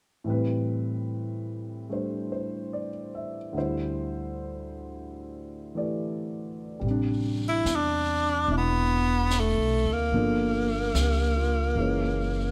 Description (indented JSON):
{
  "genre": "jazz ballad",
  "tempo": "73 BPM",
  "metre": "4/4",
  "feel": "swing 67% on 8ths",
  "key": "A minor",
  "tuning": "A4 = 441 Hz",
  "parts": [
    { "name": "warm concert grand piano", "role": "accompaniment", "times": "0.2-12.5 s", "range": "D2 to E5", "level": "-33 LUFS", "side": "equal", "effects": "none" },
    { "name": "upright bass", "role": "bass", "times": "6.8-12.5 s", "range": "E1 to E2", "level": "-30 LUFS", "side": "equal", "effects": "none" },
    { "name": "vintage brush drum kit", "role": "drums", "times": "6.8-12.5 s", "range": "brushed snare drum, hi-hat, snare drum", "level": "-40 LUFS", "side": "equal", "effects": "none" },
    { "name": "bright tenor saxophone", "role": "melody", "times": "7.5-12.5 s", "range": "A3 to E4", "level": "-28 LUFS", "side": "equal", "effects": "none" }
  ],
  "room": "moderate large studio reverb, RT60 1.2 s",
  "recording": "none",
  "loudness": "-28 LUFS",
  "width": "mono",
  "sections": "0.3-6.8 A section; 6.8-12.5 B section",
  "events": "none",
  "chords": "0.3 Am9; 3.5 D9sus4; 6.8 Am11; 10.1 Gm9; 11.8 F#9"
}